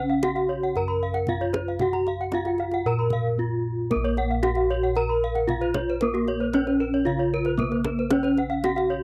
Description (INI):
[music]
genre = Balinese gamelan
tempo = 114 BPM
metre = 4/4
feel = straight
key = Bb pelog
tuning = A4 = 440 Hz
[part]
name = gamelan-type bronze metallophone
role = melody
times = 0.0-9.0 s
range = Bb3 to Bb4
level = -27 LUFS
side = equal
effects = none
[part]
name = gamelan-type bronze metallophone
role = arpeggios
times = 0.0-8.8 s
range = Bb4 to Bb5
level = -34 LUFS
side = equal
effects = none
[part]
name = gamelan-type bossed gongs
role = bass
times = 0.0-9.0 s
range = Bb1 to Bb4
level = -31 LUFS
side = equal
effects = none
[part]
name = gamelan-type bronze metallophone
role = arpeggios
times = 0.1-9.0 s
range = Gb4 to Cb6+35c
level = -35 LUFS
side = equal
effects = none
[part]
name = kendang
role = percussion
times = 0.2-8.8 s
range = none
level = -36 LUFS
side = equal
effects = none
[sound]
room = light reverb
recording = dry, close 1970s-style studio recording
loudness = -24 LUFS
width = mono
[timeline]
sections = 0.0-3.9 A section; 3.9-9.0 A section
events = none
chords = none